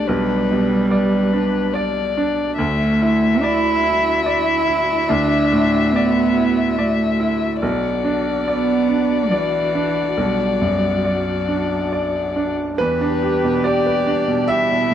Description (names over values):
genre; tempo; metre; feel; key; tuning
neoclassical piano and strings; 71 BPM; 3/4; rubato; E minor; A4 = 440 Hz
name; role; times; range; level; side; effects
muted violin; melody; 0.0-14.9 s; B4 to E5; -22 LUFS; left 8 dB; none
muted cello; second line; 0.0-14.9 s; E3 to G4; -20 LUFS; right 3 dB; none
bright grand piano; accompaniment; 0.0-14.9 s; B1 to E5; -20 LUFS; right 2 dB; none
muted chamber string section; sustained chords; 0.0-14.9 s; G3 to F#5; -29 LUFS; left 4 dB; none
room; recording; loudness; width
little or no reverb; dry, close 1970s-style studio recording; -16 LUFS; side -10 dB against mid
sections
0.0-12.8 A section; 12.8-14.9 B section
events
none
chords
0.0 G/B; 2.6 Dadd9; 7.6 Bm; 12.8 Em7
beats
| 0.08 0.91 1.74 | 2.58 3.43 4.26 | 5.10 5.94 6.77 | 7.61 8.46 9.31 | 10.18 11.05 11.93 | 12.79 13.64 14.49